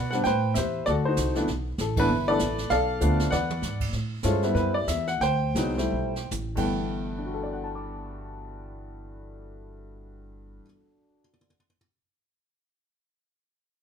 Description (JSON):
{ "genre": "jazz piano trio", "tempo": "137-196 BPM", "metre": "4/4", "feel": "swing 60% on 8ths", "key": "G major", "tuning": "A4 = 440 Hz", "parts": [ { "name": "clear upright piano", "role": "melody", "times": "0.0-11.8 s", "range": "G2 to D6", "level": "-26 LUFS", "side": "left 1 dB", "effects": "none" }, { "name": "upright bass", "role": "bass", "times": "0.0-10.6 s", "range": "G1 to B2", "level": "-29 LUFS", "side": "equal", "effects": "none" }, { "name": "jazz brush drum kit", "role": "drums", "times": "0.1-6.6 s", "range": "brushed snare drum, crash cymbal, hi-hat, kick drum, ride cymbal, snare drum, toms", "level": "-34 LUFS", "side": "right 2 dB", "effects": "none" } ], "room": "moderate studio reverb, RT60 0.9 s", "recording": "minimal, uncompressed stereo recording", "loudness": "-24 LUFS", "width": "side -7 dB against mid", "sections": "0.0-3.9 A section; 3.9-6.7 B section; 6.7-10.2 C section", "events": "band accent 1.9; drum fill 3.0-3.6, 5.9-6.7; slowing down 3.9-6.7", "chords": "0.2 Am9; 0.9 D7b9; 1.5 G69; 2.7 Bm7b5; 3.3 E7; 3.9 Am7; 5.2 D7sus4; 6.5 G69" }